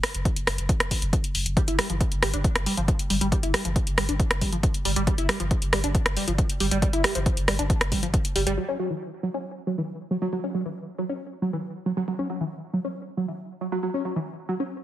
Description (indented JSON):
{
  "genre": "driving peak-time techno",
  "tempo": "137 BPM",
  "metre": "4/4",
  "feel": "straight",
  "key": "unclear",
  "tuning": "A4 = 439 Hz",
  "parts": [
    { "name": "saturated sub bass", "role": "bass", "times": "0.0-8.6 s", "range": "F#1 to G1", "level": "-29 LUFS", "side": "equal", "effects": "sidechain pumping, low-pass filter" },
    { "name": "punchy analog drum machine", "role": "drums", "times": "0.0-8.6 s", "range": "hi-hat, rim click", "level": "-26 LUFS", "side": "equal", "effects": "none" },
    { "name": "electronic kick drum", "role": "drums", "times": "0.3-8.2 s", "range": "none", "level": "-24 LUFS", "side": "equal", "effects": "none" },
    { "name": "tight sequenced synth", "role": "riff", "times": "1.6-14.6 s", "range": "E3 to E4", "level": "-28 LUFS", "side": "right 1 dB", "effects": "chorus, overdrive, sidechain pumping, dub echo" }
  ],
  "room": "moderate stone room reverb, RT60 1.1 s",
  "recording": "heavily compressed radio sound",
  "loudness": "-23 LUFS",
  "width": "side -13 dB against mid",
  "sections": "0.0-8.6 A section; 8.6-14.8 B section",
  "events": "none",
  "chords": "0.0 N.C.; 1.6 G5; 8.6 F#5"
}